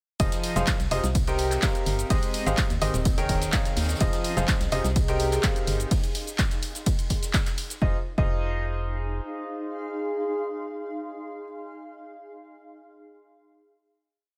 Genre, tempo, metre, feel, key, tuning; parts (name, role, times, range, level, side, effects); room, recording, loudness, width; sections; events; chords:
piano house; 126 BPM; 4/4; straight; F minor; A4 = 436 Hz
bright concert grand piano; riff; 0.2-11.4 s; C3 to G5; -32 LUFS; equal; sidechain pumping, digital delay
organ-like FM bass; bass; 0.2-9.2 s; Eb1 to Eb2; -31 LUFS; equal; tube saturation, sidechain pumping
electronic kick drum; drums; 0.2-8.3 s; -28 LUFS; equal
punchy analog drum machine; drums; 0.2-7.8 s; cabasa, handclaps, hi-hat, ride cymbal; -34 LUFS; equal
swinging big-band drum kit; drums; 0.2-7.8 s; hi-hat, snare drum, tambourine; -43 LUFS; equal
granular cloud pad; texture; 1.6-11.3 s; C4 to C6; -37 LUFS; equal; built-in reverb, sidechain pumping
light reverb, studio reverb; -26 LUFS; mono
0.2-7.8 drop; 7.8-11.6 final chord
drop 0.2-7.8
0.2 Fm7; 1.1 Cm7; 2.1 Abmaj7; 3.1 Eb7sus4; 4.0 Fm7; 5.0 Cm7; 5.9 N.C.; 7.8 Fm7